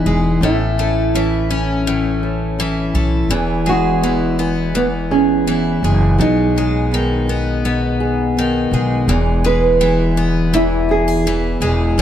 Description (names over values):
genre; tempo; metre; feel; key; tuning
acoustic pop; 83 BPM; 4/4; straight; E major; A4 = 440 Hz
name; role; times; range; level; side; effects
nylon-string guitar; melody; 0.0-11.9 s; B3 to B4; -18 LUFS; right 2 dB; none
picked twelve-string acoustic guitar; accompaniment; 0.0-12.0 s; E2 to C#4; -18 LUFS; left 3 dB; none
fingerpicked steel-string acoustic guitar; arpeggios; 0.0-12.0 s; F#3 to A4; -24 LUFS; right 6 dB; none
upright bass; bass; 0.1-12.0 s; E1 to B1; -20 LUFS; equal; none
room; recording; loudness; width
light reverb; none; -14 LUFS; side -10 dB against mid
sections
0.0-12.0 A section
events
none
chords
0.4 A; 3.3 E; 6.2 B6; 9.1 E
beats
| 0.42 1.14 1.86 2.59 | 3.31 4.03 4.75 5.48 | 6.20 6.92 7.64 8.37 | 9.09 9.81 10.54 11.26 | 11.98